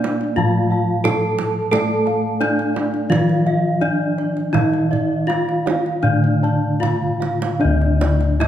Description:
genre	Javanese gamelan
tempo	75-88 BPM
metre	4/4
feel	straight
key	D pelog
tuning	A4 = 442 Hz
part	gamelan-type bronze metallophone	melody	0.0-8.5 s	D4 to A4	-22 LUFS	left 1 dB	none
part	gamelan-type bronze metallophone	accompaniment	0.0-8.5 s	D3 to Bb3	-23 LUFS	right 2 dB	none
part	gamelan-type bossed gongs	arpeggios	0.0-8.5 s	D5 to A5	-28 LUFS	left 5 dB	none
part	gamelan-type bronze metallophone	arpeggios	0.0-8.5 s	D5 to A5	-26 LUFS	right 5 dB	none
part	gamelan-type bossed gongs	bass	0.0-8.5 s	D2 to Bb4	-21 LUFS	left 2 dB	none
part	kendang	percussion	0.0-8.5 s	none	-26 LUFS	right 5 dB	none
room	moderate recital hall reverb, RT60 1.7 s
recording	none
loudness	-16 LUFS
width	side -11 dB against mid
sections	0.0-7.6 A section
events	drum fill 7.0-7.6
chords	none

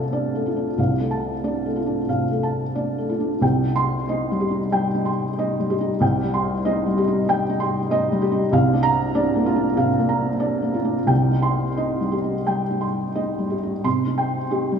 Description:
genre	neoclassical minimalist piano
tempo	86-98 BPM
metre	4/4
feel	rubato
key	C dorian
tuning	A4 = 439 Hz
part	felt-muted upright piano	solo	0.0-14.8 s	C2 to C6	-19 LUFS	equal	diffuse ambient delay
room	wet plate reverb, RT60 3.3 s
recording	dreamy mix soaked in reverb, studio ambience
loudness	-19 LUFS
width	side -7 dB against mid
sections	0.0-13.8 A section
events	none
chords	0.0 Dm/C; 3.4 Cm; 8.5 Bb/C; 11.1 Cm

